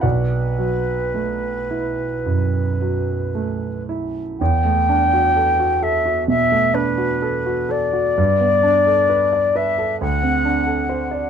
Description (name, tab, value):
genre	classical, impressionist duo for flute and grand piano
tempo	54-68 BPM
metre	4/4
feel	rubato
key	E minor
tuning	A4 = 436 Hz
part	mellow concert flute	melody	0.0-11.3 s	B4 to G5	-19 LUFS	left 2 dB	none
part	clear concert grand piano	accompaniment	0.0-11.3 s	B1 to F#5	-20 LUFS	right 2 dB	none
room	light reverb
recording	dark, warm production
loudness	-16 LUFS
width	side -7 dB against mid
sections	0.0-4.4 A section; 4.4-11.3 B section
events	none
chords	0.0 B7sus4; 4.4 Em11; 8.2 Gadd9; 10.0 D7